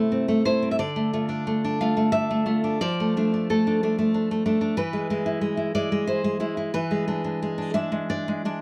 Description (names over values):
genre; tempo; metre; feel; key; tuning
romantic piece for solo classical guitar; 91 BPM; 3/4; uneven beats, rubato; unclear; A4 = 441 Hz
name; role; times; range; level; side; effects
nylon-string guitar; solo; 0.0-8.6 s; C3 to F5; -24 LUFS; equal; none
room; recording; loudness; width
light reverb; none; -25 LUFS; mono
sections
0.0-8.6 A section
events
none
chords
0.0 Am/C; 0.8 Dm; 2.8 Dm/F; 4.8 E; 6.7 E7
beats
0.08 | 0.78 1.47 2.13 | 2.81 3.50 4.15 | 4.78 5.42 6.07 | 6.74 7.41 8.10